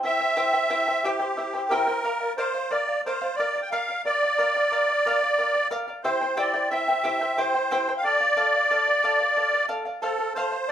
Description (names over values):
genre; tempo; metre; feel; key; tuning
andean folk, Andean ensemble; 90 BPM; 3/4; straight; unclear; A4 = 440 Hz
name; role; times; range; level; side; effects
charango; accompaniment; 0.0-10.7 s; E4 to G5; -28 LUFS; left 1 dB; none
musette accordion; melody; 0.1-10.7 s; G4 to G5; -22 LUFS; equal; none
room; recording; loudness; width
light reverb; band playing live in one room; -21 LUFS; side -10 dB against mid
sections
0.0-10.0 A section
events
none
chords
0.0 C; 2.0 Bb; 6.0 C; 8.0 Dm; 10.0 F